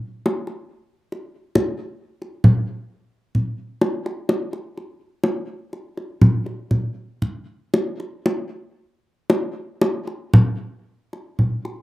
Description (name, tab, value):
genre	gamelan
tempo	57-70 BPM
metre	4/4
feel	straight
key	none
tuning	none
part	kendang	percussion	0.3-11.8 s	none	-18 LUFS	equal	none
room	light reverb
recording	recorded outdoors, with no room sound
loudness	-20 LUFS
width	side -17 dB against mid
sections	0.0-8.3 A section; 8.3-11.8 B section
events	none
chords	none